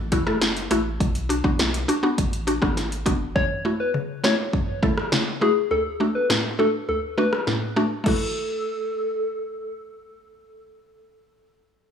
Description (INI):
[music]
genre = dancehall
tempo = 102 BPM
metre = 4/4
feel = straight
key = F# minor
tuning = A4 = 440 Hz
[part]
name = sub bass with octave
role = bass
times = 0.0-3.3 s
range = F#1 to B1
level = -29 LUFS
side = equal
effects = none
[part]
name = mallet-like synth pluck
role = accompaniment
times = 0.1-11.1 s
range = D2 to A4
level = -24 LUFS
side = equal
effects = chorus, sidechain pumping
[part]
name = deep house drum kit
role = drums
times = 0.1-8.2 s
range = crash cymbal, hi-hat, kick drum, rim click, snare drum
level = -24 LUFS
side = equal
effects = overdrive
[part]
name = soft struck synth lead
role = melody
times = 3.4-9.8 s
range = G#4 to C#5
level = -25 LUFS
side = left 2 dB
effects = chorus, tape echo
[sound]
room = light reverb, digital ambience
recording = dry, gritty hardware recording, studio reverb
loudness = -21 LUFS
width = side -7 dB against mid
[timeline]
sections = 0.0-3.4 A section; 3.4-8.1 B section; 8.1-10.4 C section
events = none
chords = 0.0 F#m7; 1.0 Bm; 3.4 F#m7; 5.7 D; 8.1 F#m7